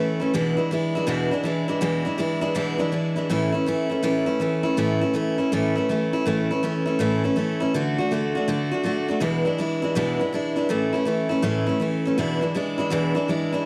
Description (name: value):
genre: rock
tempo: 162 BPM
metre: 4/4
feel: swing 65% on 8ths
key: A major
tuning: A4 = 436 Hz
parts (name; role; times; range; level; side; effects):
- picked steel-string acoustic guitar; solo; 0.0-13.7 s; E2 to F#4; -24 LUFS; equal; none
room: moderate echo chamber reverb, RT60 1.8 s, small room ambience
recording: none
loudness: -24 LUFS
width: mono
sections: 0.0-4.8 A section; 4.8-13.7 A section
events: none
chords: 0.3 E7; 3.3 A; 7.7 D; 9.2 E7; 10.7 A; 12.2 E7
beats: | 0.34 0.71 1.08 1.45 | 1.82 2.19 2.56 2.93 | 3.30 3.67 4.04 4.41 | 4.78 5.15 5.52 5.89 | 6.26 6.63 7.00 7.37 | 7.74 8.11 8.48 8.85 | 9.22 9.59 9.96 10.33 | 10.70 11.07 11.44 11.81 | 12.18 12.55 12.92 13.29